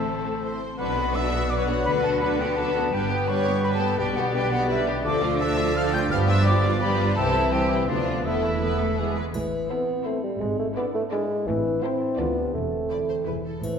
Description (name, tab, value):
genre	cinematic, playful, whimsical film cue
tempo	169 BPM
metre	3/4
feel	straight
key	B minor, A minor from 5.1 s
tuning	A4 = 440 Hz
part	music box	melody	0.0-0.6 s	A5	-42 LUFS	right 2 dB	none
part	rich studio violin section	melody	0.0-13.5 s	D4 to D5	-31 LUFS	left 7 dB	none
part	clear oboe	second line	0.0-9.2 s	D5 to G5	-34 LUFS	equal	none
part	clear studio violin section	second line	0.0-13.6 s	E4 to G5	-34 LUFS	left 1 dB	none
part	dark clarinet	second line	0.0-9.1 s	C4 to D5	-34 LUFS	left 3 dB	none
part	silver concert flute	second line	0.0-9.0 s	E5 to G6	-29 LUFS	right 1 dB	none
part	clear studio viola section	accompaniment	0.0-13.5 s	E3 to F4	-33 LUFS	right 1 dB	none
part	mellow French horn section	sustained chords	0.0-13.8 s	E3 to C5	-33 LUFS	equal	none
part	concert harp	arpeggios	0.0-13.8 s	G2 to C6	-33 LUFS	left 5 dB	none
part	clear studio cello section	bass	0.0-13.8 s	C2 to A3	-30 LUFS	right 3 dB	none
part	rich studio double bass section	bass	0.0-13.8 s	E1 to D2	-30 LUFS	right 2 dB	none
part	dark bassoon	accompaniment	0.8-13.8 s	E3 to C4	-28 LUFS	equal	none
part	triangle	percussion	9.3-10.0, 13.6-13.8 s	none	-49 LUFS	left 2 dB	none
room	wet scoring stage reverb, RT60 1.6 s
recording	minimal, uncompressed stereo recording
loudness	-22 LUFS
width	side -7 dB against mid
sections	0.8-9.3 A section; 9.3-13.8 B section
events	none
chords	0.0 Am; 0.8 Bm; 1.9 Bm/D; 2.9 G; 4.0 G/B; 5.1 Dm; 6.1 G7; 7.2 C; 7.9 Bdim/D; 8.3 Esus4; 9.0 E; 9.3 Am; 10.4 E7/G#; 11.5 Am; 12.2 Dm; 12.5 Am/E; 13.3 E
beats	0.06 0.43 | 0.79 1.15 1.50 | 1.86 2.22 2.58 | 2.93 3.29 3.64 | 3.99 4.34 4.70 | 5.05 5.41 5.76 | 6.11 6.46 6.82 | 7.17 7.53 7.89 | 8.25 8.62 8.98 | 9.35 9.71 10.06 | 10.42 10.77 11.12 | 11.47 11.83 12.18 | 12.54 12.90 13.27 | 13.63